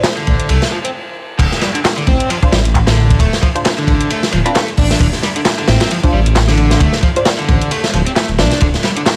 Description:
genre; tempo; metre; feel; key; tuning
breakbeat, breaks; 133 BPM; 4/4; swing 56% on 16ths; unclear; A4 = 439 Hz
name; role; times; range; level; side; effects
filtered dub chord stab; stabs; 0.0-7.3 s; D4 to C5; -24 LUFS; equal; phaser, lush chorus, dub echo
crunchy breakbeat drum kit; drums; 0.0-9.2 s; crash cymbal, hi-hat, kick drum, ride cymbal, snare drum; -17 LUFS; equal; none
house drum kit; drums; 0.0-9.2 s; handclaps, hi-hat; -24 LUFS; equal; none
overdriven electric guitar; riff; 0.2-9.0 s; D3 to D4; -21 LUFS; equal; spring reverb, dub echo
dark detuned saw bass; bass; 0.3-8.7 s; D1 to C2; -17 LUFS; equal; none
room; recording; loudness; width
little or no reverb; vinyl crackle; -14 LUFS; mono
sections
0.0-1.4 A section; 1.4-9.2 B section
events
stop 0.9-1.4; drop 1.4-9.2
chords
0.0 Dm7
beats
0.04 0.49 0.94 | 1.40 1.85 2.30 2.75 | 3.20 3.65 4.10 4.55 | 5.00 5.46 5.91 6.36 | 6.81 7.26 7.71 8.16 | 8.61 9.06

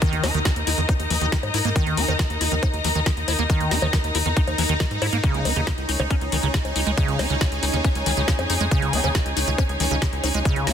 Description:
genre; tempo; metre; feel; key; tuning
psychedelic trance; 138 BPM; 4/4; straight; unclear; A4 = 440 Hz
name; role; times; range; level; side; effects
evolving wavetable pad; sustained chords; 0.0-10.7 s; Eb4; -30 LUFS; right 3 dB; phaser, built-in reverb, sidechain pumping
liquid acid bass; riff; 0.0-10.7 s; Db3 to Fb4; -26 LUFS; equal; chorus, auto-pan, sidechain pumping, tape echo
electronic kick drum; drums; 0.0-10.5 s; none; -21 LUFS; equal; studio reverb
garage drum kit; drums; 0.0-10.7 s; bongos, hi-hat, snare drum; -27 LUFS; left 2 dB; studio reverb
downlifter; sound effects; 0.0-1.8 s; none; -39 LUFS; equal; none
dark studio string section; texture; 0.0-10.7 s; Db4 to Bb5; -27 LUFS; left 3 dB; sidechain pumping
tight sequencer bass; bass; 0.1-10.7 s; Db2 to Ab2; -25 LUFS; equal; none
room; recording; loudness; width
light reverb; dense, heavily limited modern master; -19 LUFS; side -8 dB against mid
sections
0.0-10.7 A section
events
none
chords
0.0 Eb5; 5.2 Db5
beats
| 0.02 0.45 0.89 1.32 | 1.76 2.19 2.63 3.06 | 3.50 3.93 4.37 4.80 | 5.24 5.67 6.11 6.54 | 6.97 7.41 7.84 8.28 | 8.71 9.15 9.58 10.02 | 10.45

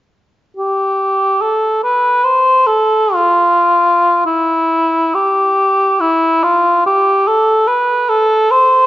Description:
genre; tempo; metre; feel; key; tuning
classical, free, expressive piece for unaccompanied cor anglais; 45-74 BPM; 4/4; rubato; unclear; A4 = 438 Hz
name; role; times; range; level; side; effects
mellow cor anglais; solo; 0.6-8.9 s; E4 to C5; -10 LUFS; equal; none
room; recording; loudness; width
moderate recital hall reverb, RT60 1.8 s; nothing above 7.5 kHz; -10 LUFS; side -14 dB against mid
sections
0.6-4.3 A section; 4.3-8.9 B section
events
none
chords
none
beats
| 0.57 1.42 2.24 3.13 | 4.26 5.15 6.00 6.85 | 7.68 8.50

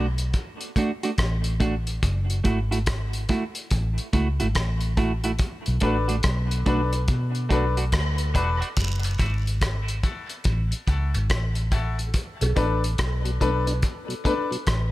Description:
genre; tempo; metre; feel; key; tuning
dub reggae; 71 BPM; 4/4; swing 63% on 16ths; unclear; A4 = 442 Hz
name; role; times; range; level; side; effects
clean electric guitar; accompaniment; 0.0-9.3 s; A3 to F#4; -29 LUFS; right 3 dB; high-pass filter, dub echo
vintage muted fingered electric bass; bass; 0.0-14.9 s; E1 to B2; -24 LUFS; equal; none
cloth-damped thuddy drum kit; drums; 0.2-14.9 s; hi-hat, kick drum, rim click; -26 LUFS; equal; none
clear upright piano; stabs; 5.8-14.5 s; D4 to B4; -29 LUFS; left 3 dB; high-pass filter, dub echo
jawbone-type rattle and cowbell; percussion; 8.8-12.6 s; none; -36 LUFS; right 4 dB; high-pass filter on perc, dub echo
mellow tonewheel organ; accompaniment; 9.0-14.6 s; F#2 to E4; -34 LUFS; left 1 dB; slow rotary speaker, high-pass filter, dub echo
room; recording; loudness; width
studio ambience; none; -22 LUFS; side -17 dB against mid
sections
0.0-14.9 A section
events
break 0.0-8.8; filter sweep 5.4-12.1; part muted 12.1-14.9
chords
0.0 Bm7; 2.0 F#m7; 5.4 Bm7; 8.8 F#m7; 12.1 Bm7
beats
0.34 1.18 | 2.02 2.87 3.71 4.56 | 5.40 6.24 7.09 7.93 | 8.77 9.62 10.46 11.30 | 12.15 12.99 13.83 14.68

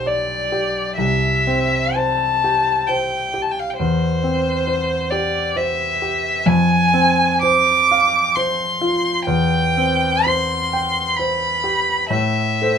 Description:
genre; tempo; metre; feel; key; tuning
classical, romantic duo for violin and grand piano; 57-68 BPM; 3/4; rubato; C major; A4 = 439 Hz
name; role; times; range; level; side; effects
rich violin; melody; 0.0-12.8 s; C5 to D6; -18 LUFS; equal; none
bright concert grand piano; accompaniment; 0.0-12.8 s; B1 to G5; -20 LUFS; equal; none
room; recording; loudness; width
light reverb; minimal, uncompressed stereo recording; -16 LUFS; side -7 dB against mid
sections
0.0-12.8 A section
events
none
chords
0.0 G/B; 1.0 C; 3.8 C/E; 6.5 Fm; 9.3 C/E; 12.1 Am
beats
0.07 | 0.99 1.98 2.89 | 3.79 4.67 5.56 | 6.46 7.43 8.36 | 9.26 10.26 11.19 | 12.11

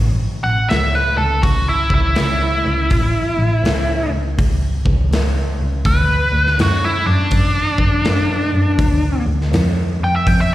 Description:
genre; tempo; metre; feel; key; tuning
blues rock power trio and southern rock; 82 BPM; 4/4; swing 64% on 8ths; A mixolydian; A4 = 440 Hz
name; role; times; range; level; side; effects
dark double bass; bass; 0.0-10.5 s; A1 to F#2; -18 LUFS; equal; none
nasal lead guitar with a parked wah; melody; 0.4-10.5 s; D4 to G5; -18 LUFS; equal; overdrive, slapback echo
big rock drum kit; drums; 0.7-10.5 s; hi-hat, kick drum, snare drum; -20 LUFS; equal; none
room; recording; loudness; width
little or no reverb; live gig heard through the venue's PA, recital hall reverb; -14 LUFS; side -15 dB against mid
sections
0.0-10.5 A section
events
lead electric guitar solo 0.0-10.5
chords
0.0 A; 5.9 D; 8.8 Dm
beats
0.71 1.45 2.18 | 2.92 3.65 4.39 5.12 | 5.86 6.59 7.33 8.06 | 8.80 9.53 10.27

